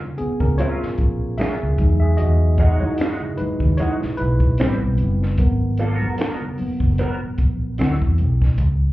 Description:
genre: R&B, neo-soul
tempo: 75 BPM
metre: 4/4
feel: swing 56% on 16ths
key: unclear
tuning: A4 = 440 Hz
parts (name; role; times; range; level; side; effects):
- tine electric piano; accompaniment; 0.0-8.6 s; Gb3 to Fb5; -24 LUFS; left 1 dB; plate reverb
- congas; percussion; 0.0-8.8 s; none; -32 LUFS; right 2 dB; none
- vintage muted fingered electric bass; bass; 0.2-8.9 s; Gb1 to E2; -19 LUFS; equal; none
- compact cocktail drum kit; drums; 0.2-8.8 s; finger snaps, hi-hat, kick drum, snare drum; -21 LUFS; equal; none
- electric guitar through a small old amp; second line; 0.6-7.9 s; Gb3 to B4; -27 LUFS; right 4 dB; wah, vibrato effect, plate reverb
room: light reverb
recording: heard muffled through a wall, club reverb, EQ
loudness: -17 LUFS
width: side -17 dB against mid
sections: 0.0-8.9 A section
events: tine electric piano solo 0.0-8.9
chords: 0.0 Ebm9 (rootless); 1.8 Emaj9; 4.6 Am9; 5.4 Abm9; 7.8 D9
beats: 0.58 1.38 | 2.18 2.98 3.78 4.58 | 5.38 6.18 6.98 7.78 | 8.58

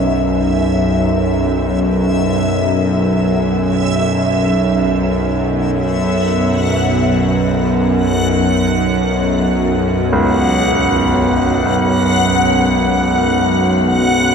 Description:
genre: dark ambient drone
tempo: free time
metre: none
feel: none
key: unclear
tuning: A4 = 440 Hz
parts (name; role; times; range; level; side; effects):
- bowed-like drone; drone; 0.0-14.3 s; B1 to F#2; -15 LUFS; equal; built-in reverb
- backwards swelling texture; texture; 0.0-14.3 s; E5 to F#5; -20 LUFS; left 1 dB; built-in reverb, shimmer reverb
- sweeping resonant pad; sustained chords; 5.8-14.3 s; F#3 to F#4; -18 LUFS; equal; chorus
- clear concert grand piano; arpeggios; 10.1-14.3 s; C#2; -19 LUFS; right 1 dB; analog delay, shimmer reverb
room: wet spring reverb, RT60 2.4 s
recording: echo-heavy mix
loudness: -13 LUFS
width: side -6 dB against mid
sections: 0.0-14.3 A section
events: fade-in on synth texture 0.0-14.3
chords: 0.0 B5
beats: free time

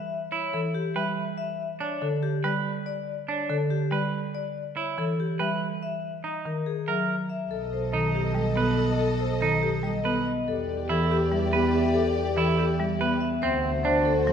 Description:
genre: classical, minimalist pattern music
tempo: 284 BPM (eighths)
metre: 7/8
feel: straight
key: G lydian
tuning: A4 = 440 Hz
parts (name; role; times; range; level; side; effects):
- vibraphone with medium hard mallets; melody; 0.0-14.3 s; G4 to F#5; -31 LUFS; left 8 dB; none
- semi-hollow electric guitar; arpeggios; 0.3-14.1 s; C4 to B4; -30 LUFS; right 4 dB; none
- marimba with medium hard mallets; accompaniment; 0.5-14.3 s; D3 to B3; -29 LUFS; right 1 dB; none
- mellow hollow alto flute; second line; 7.5-14.3 s; G4 to C5; -31 LUFS; right 2 dB; none
- warm symphonic violin section; sustained chords; 7.5-14.3 s; F#4 to D#5; -34 LUFS; left 5 dB; none
- rich double bass; bass; 7.5-14.3 s; B1 to E2; -30 LUFS; right 3 dB; none
room: wet scoring stage reverb, RT60 2.0 s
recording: none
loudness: -24 LUFS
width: side -8 dB against mid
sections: 0.0-7.5 A section; 7.5-14.3 B section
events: none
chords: 0.0 A7sus2 (rootless); 1.6 G; 4.6 A7sus2 (rootless); 6.0 F#7; 7.5 B7b13; 10.5 Em7; 13.4 D7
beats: | 0.12 0.33 0.54 0.75 0.96 1.17 1.38 | 1.59 1.80 2.02 2.23 2.44 2.65 2.86 | 3.07 3.28 3.50 3.71 3.92 4.13 4.34 | 4.55 4.76 4.97 5.19 5.40 5.61 5.82 | 6.03 6.24 6.45 6.66 6.88 7.09 7.30 | 7.51 7.72 7.93 8.14 8.36 8.57 8.78 | 8.99 9.20 9.41 9.62 9.83 10.04 10.26 | 10.47 10.68 10.89 11.10 11.31 11.52 11.73 | 11.95 12.16 12.37 12.58 12.79 13.00 13.21 | 13.43 13.64 13.85 14.06 14.27

